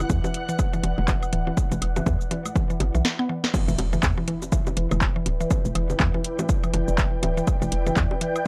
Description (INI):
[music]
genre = minimal techno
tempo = 122 BPM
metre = 4/4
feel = swing 59% on 16ths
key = E minor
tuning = A4 = 443 Hz
[part]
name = hollow knocking FM bass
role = bass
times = 0.0-8.1 s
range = D1 to E2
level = -28 LUFS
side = equal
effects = sidechain pumping
[part]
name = booming analog drum machine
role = drums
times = 0.0-8.4 s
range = cabasa, crash cymbal, handclaps, hi-hat, snare drum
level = -30 LUFS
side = equal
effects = none
[part]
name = bongos, congas and woodblock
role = percussion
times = 0.0-8.4 s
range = none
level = -36 LUFS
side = equal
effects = none
[part]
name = ethereal airy pad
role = texture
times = 0.0-8.5 s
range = E4 to G5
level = -34 LUFS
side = equal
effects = ensemble chorus, built-in reverb, phaser, sidechain pumping
[part]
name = mallet-like synth pluck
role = riff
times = 0.1-8.3 s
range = E3 to B3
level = -32 LUFS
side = equal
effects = chorus, sidechain pumping, analog delay
[part]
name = electronic kick drum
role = drums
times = 0.1-8.1 s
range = none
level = -26 LUFS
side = equal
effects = overdrive
[part]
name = impact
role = sound effects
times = 3.6-5.5 s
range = none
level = -38 LUFS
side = equal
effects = none
[sound]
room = little or no reverb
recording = dry, gritty hardware recording, transformer saturation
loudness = -24 LUFS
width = mono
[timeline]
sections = 0.0-3.5 A section; 3.5-8.5 B section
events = drum fill 3.0-3.5; drop 3.5-8.5; impact 3.5-5.5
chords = 0.0 E7(no3); 3.5 Em7